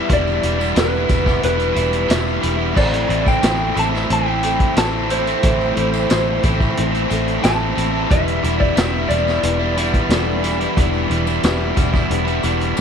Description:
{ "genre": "classic rock", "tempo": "90 BPM", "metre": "4/4", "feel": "straight", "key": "A minor", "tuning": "A4 = 440 Hz", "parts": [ { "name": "electric slide guitar", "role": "melody", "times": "0.0-12.7 s", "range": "B4 to A5", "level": "-23 LUFS", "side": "equal", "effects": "slapback echo" }, { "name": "picked twelve-string acoustic guitar", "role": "accompaniment", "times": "0.0-12.8 s", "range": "A2 to B4", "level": "-30 LUFS", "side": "right 1 dB", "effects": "none" }, { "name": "overdriven electric guitar", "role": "riff", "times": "0.0-12.8 s", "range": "A2 to E4", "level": "-20 LUFS", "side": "equal", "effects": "none" }, { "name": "dark upright piano", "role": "accompaniment", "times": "0.1-12.8 s", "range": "C4 to C5", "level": "-29 LUFS", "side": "left 10 dB", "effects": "none" }, { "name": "fingered electric bass", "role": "bass", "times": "0.1-12.8 s", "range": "E1 to A1", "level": "-22 LUFS", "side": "equal", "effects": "none" }, { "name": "vintage drum kit", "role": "drums", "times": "0.1-12.8 s", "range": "crash cymbal, hi-hat, kick drum, snare drum", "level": "-20 LUFS", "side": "equal", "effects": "none" }, { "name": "tambourine", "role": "percussion", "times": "0.1-12.8 s", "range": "none", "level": "-38 LUFS", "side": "left 17 dB", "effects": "none" } ], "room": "light reverb, small room ambience", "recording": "1960s-style stereo", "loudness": "-15 LUFS", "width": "side -7 dB against mid", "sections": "0.0-12.8 A section", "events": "none", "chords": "0.0 Em7; 2.8 Am; 8.1 Em7", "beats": "| 0.10 0.77 1.43 2.10 | 2.77 3.43 4.10 4.77 | 5.43 6.10 6.77 7.44 | 8.10 8.77 9.44 10.10 | 10.77 11.44 12.11 12.78" }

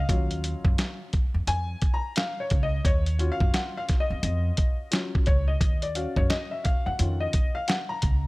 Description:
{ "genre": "hip hop, jazz-hop", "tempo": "87 BPM", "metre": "4/4", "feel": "swing 62% on 16ths", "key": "Eb minor", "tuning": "A4 = 440 Hz", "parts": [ { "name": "warm upright piano", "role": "accompaniment", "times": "0.0-8.3 s", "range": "Eb3 to Bb5", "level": "-31 LUFS", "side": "left 2 dB", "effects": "none" }, { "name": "upright bass", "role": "bass", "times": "0.1-8.3 s", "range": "Db2 to Gb2", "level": "-26 LUFS", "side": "equal", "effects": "none" }, { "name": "dusty soul sampler-style drum kit", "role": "drums", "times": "0.1-8.2 s", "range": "hi-hat, kick drum, snare drum", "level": "-25 LUFS", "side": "equal", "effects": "none" } ], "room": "small room ambience", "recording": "none", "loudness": "-23 LUFS", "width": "side -22 dB against mid", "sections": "0.0-8.3 A section", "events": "upright piano solo 0.0-8.3", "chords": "0.0 Ebm9", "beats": "| 0.09 0.78 1.47 2.16 | 2.85 3.54 4.23 4.92 | 5.61 6.30 6.99 7.68" }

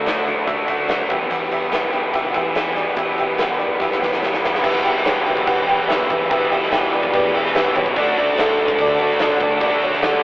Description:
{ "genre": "classic rock", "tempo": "144 BPM", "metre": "4/4", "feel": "straight", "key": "E minor", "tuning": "A4 = 440 Hz", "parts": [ { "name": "honky-tonk upright piano", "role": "accompaniment", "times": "0.0-10.2 s", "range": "F#4 to G5", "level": "-21 LUFS", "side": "right 1 dB", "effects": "none" }, { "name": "distorted electric guitar", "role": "riff", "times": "0.0-10.2 s", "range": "E2 to G4", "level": "-23 LUFS", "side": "left 1 dB", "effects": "distortion" }, { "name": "sludgy distorted guitar", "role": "riff", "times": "0.0-10.2 s", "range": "E2 to F#4", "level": "-25 LUFS", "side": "right 1 dB", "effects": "overdrive" }, { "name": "fuzz fingered electric bass", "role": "bass", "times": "0.0-10.2 s", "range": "B1 to E3", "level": "-29 LUFS", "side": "equal", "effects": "overdrive" }, { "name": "huge arena drum kit", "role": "drums", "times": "0.1-10.1 s", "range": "crash cymbal, hi-hat, kick drum, snare drum", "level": "-22 LUFS", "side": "equal", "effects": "none" }, { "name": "distorted electric guitar", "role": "riff", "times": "4.6-10.2 s", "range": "E2 to D4", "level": "-25 LUFS", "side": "equal", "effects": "none" } ], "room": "wet stone room reverb, RT60 1.3 s", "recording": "rough rehearsal-room recording, telephone sound", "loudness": "-16 LUFS", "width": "side -20 dB against mid", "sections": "0.0-4.6 A section; 4.6-10.2 B section", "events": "drum fill 3.8-4.6", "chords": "0.0 Dadd9; 1.1 Emadd9; 8.0 D", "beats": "0.05 0.47 0.88 | 1.30 1.72 2.13 2.55 | 2.97 3.38 3.80 4.22 | 4.63 5.05 5.47 5.88 | 6.30 6.71 7.13 7.54 | 7.96 8.37 8.79 9.20 | 9.62 10.03" }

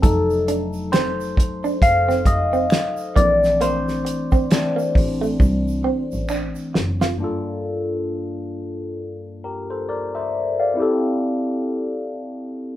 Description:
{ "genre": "R&B, neo-soul", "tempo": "67 BPM", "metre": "4/4", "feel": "swing 59% on 16ths", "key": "G dorian", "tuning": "A4 = 437 Hz", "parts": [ { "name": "barky tine electric piano", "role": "accompaniment", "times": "0.0-12.8 s", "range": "G2 to F5", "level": "-21 LUFS", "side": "left 2 dB", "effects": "overdrive, phaser" }, { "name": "muted double bass", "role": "bass", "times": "0.0-7.2 s", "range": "F1 to C2", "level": "-25 LUFS", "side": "equal", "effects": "none" }, { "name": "damped 70s drum kit", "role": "drums", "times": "0.0-7.2 s", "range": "hi-hat, kick drum, snare drum", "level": "-18 LUFS", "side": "equal", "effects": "none" }, { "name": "tube shaker and finger snaps", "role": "percussion", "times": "0.0-7.2 s", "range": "none", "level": "-38 LUFS", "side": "right 2 dB", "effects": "none" }, { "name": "electric guitar through a small old amp", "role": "second line", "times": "0.5-7.1 s", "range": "A3 to F4", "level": "-24 LUFS", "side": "right 6 dB", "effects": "none" } ], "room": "light reverb", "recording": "band playing live in one room", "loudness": "-18 LUFS", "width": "side -13 dB against mid", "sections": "0.0-7.2 A section; 7.2-12.8 B section", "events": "tine electric piano solo 0.0-7.2; drum fill 5.4-7.2", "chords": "0.0 F7b9; 3.2 Bbmaj9#11; 7.2 Gm9; 10.8 Am7", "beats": "| 0.03 0.92 1.82 2.71 | 3.61 4.51 5.40 6.30 | 7.19 8.09 8.98 9.88 | 10.78 11.67 12.57" }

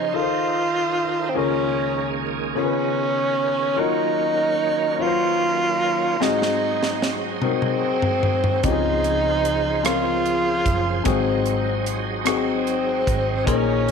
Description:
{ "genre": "slow gospel", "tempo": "50 BPM (dotted quarters)", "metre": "6/8", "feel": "straight", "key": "unclear", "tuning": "A4 = 439 Hz", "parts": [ { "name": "breathy tenor saxophone", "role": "melody", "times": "0.0-13.9 s", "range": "C4 to F4", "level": "-22 LUFS", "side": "right 1 dB", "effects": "none" }, { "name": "warm concert grand piano", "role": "accompaniment", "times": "0.0-13.9 s", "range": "Ab2 to C5", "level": "-25 LUFS", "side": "left 11 dB", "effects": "none" }, { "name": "bright tonewheel organ", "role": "sustained chords", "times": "0.0-13.9 s", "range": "Db2 to C5", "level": "-27 LUFS", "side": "right 8 dB", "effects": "slow rotary speaker, chorus vibrato" }, { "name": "crisp fusion drum kit", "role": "drums", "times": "6.2-13.9 s", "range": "hi-hat, kick drum, rim click, snare drum, toms", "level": "-25 LUFS", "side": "right 1 dB", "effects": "none" }, { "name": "hollow-body short-scale fingered electric bass", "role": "bass", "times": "8.6-13.9 s", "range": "Gb1 to Db2", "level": "-27 LUFS", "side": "right 1 dB", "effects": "none" } ], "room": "moderate echo chamber reverb, RT60 2.4 s", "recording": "1960s-style stereo with parts hard left and right", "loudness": "-19 LUFS", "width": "side -6 dB against mid", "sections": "0.0-13.9 A section", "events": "drum fill 6.2-8.6", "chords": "0.1 F7; 1.4 Bbm7/Db; 2.6 Db7; 3.8 Gbmaj7; 6.2 Ab7; 8.6 Dbmaj7; 11.1 Ab7", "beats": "0.14 | 1.36 2.57 | 3.78 5.00 | 6.21 7.42 | 8.64 9.85 | 11.06 12.27 | 13.48" }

